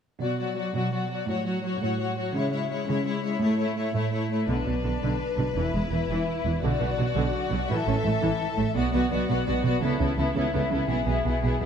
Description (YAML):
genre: cinematic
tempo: 112 BPM (dotted quarters)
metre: 6/8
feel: straight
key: B dorian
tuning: A4 = 440 Hz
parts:
  - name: warm symphonic violin section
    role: melody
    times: 0.2-11.7 s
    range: G#4 to E5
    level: -33 LUFS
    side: left 7 dB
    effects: none
  - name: rich symphonic violin section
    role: second line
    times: 0.2-11.7 s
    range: D4 to A4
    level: -31 LUFS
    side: left 4 dB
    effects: none
  - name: warm symphonic viola section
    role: accompaniment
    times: 0.2-11.6 s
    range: D3 to C#4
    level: -30 LUFS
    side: equal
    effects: none
  - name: warm symphonic cello section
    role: bass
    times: 0.2-11.7 s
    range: E2 to C#3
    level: -29 LUFS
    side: right 3 dB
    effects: none
  - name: rich symphonic double bass section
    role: bass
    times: 4.5-11.7 s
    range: E1 to C#2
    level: -29 LUFS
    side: right 2 dB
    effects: none
room: moderate scoring stage reverb, RT60 1.9 s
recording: none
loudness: -24 LUFS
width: side -7 dB against mid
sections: 0.2-4.5 A section; 4.5-11.7 B section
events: build-up 4.5-11.7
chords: 0.2 Bm; 1.3 F#m/A; 2.3 C#m; 3.4 A; 4.5 Bm; 5.6 E5; 6.6 Bm; 7.7 A5; 8.8 Bm; 9.8 Aadd9/C#; 10.9 E/B